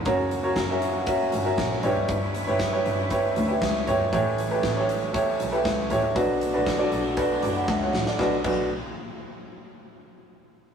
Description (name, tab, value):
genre	piano-driven pop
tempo	118 BPM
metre	4/4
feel	straight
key	B minor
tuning	A4 = 440 Hz
part	bright upright piano	accompaniment	0.0-8.7 s	B1 to D6	-24 LUFS	right 1 dB	none
part	clear studio string section	sustained chords	0.0-8.4 s	B2 to B4	-35 LUFS	right 2 dB	none
part	bright double bass	bass	0.0-8.7 s	F#1 to D2	-31 LUFS	equal	none
part	huge arena drum kit	drums	0.1-8.6 s	crash cymbal, hi-hat, kick drum, snare drum, toms	-30 LUFS	equal	none
room	moderate small room reverb, RT60 0.5 s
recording	rough rehearsal-room recording, tube saturation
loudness	-22 LUFS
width	side -7 dB against mid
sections	0.1-8.2 A section; 8.2-10.2 B section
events	drum fill 7.7-8.2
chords	0.1 F#; 1.8 C#m7b5/G; 4.1 A7; 6.2 Bm7